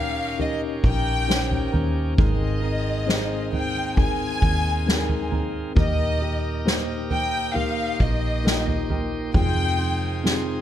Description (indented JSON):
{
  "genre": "pop ballad",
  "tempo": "67 BPM",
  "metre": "4/4",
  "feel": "straight",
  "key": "Eb major",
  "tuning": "A4 = 440 Hz",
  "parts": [
    { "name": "dark studio violin section", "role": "melody", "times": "0.0-10.2 s", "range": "Eb5 to Ab5", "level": "-28 LUFS", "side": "left 2 dB", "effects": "none" },
    { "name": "mellow tine electric piano", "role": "accompaniment", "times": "0.0-10.6 s", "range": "Ab2 to C5", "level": "-28 LUFS", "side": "left 1 dB", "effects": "medium stereo tremolo" },
    { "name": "bright tonewheel organ", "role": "sustained chords", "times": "0.0-10.6 s", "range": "Eb3 to C5", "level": "-36 LUFS", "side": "left 2 dB", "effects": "overdrive, wide subtle chorus" },
    { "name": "flamenco guitar", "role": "arpeggios", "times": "0.0-10.6 s", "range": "F2 to C5", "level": "-36 LUFS", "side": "right 5 dB", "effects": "digital delay" },
    { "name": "vintage muted fingered electric bass", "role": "bass", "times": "0.0-10.6 s", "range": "Ab1 to F2", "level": "-26 LUFS", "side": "equal", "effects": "none" },
    { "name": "soft-mallet drum kit", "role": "drums", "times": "0.4-10.5 s", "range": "kick drum, snare drum, toms", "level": "-23 LUFS", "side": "equal", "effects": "none" }
  ],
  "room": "studio reverb",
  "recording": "none",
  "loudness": "-20 LUFS",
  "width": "side -11 dB against mid",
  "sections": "0.0-10.6 A section",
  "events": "none",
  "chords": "0.0 Eb7; 2.2 Abadd9; 5.8 Eb; 9.3 Fm7"
}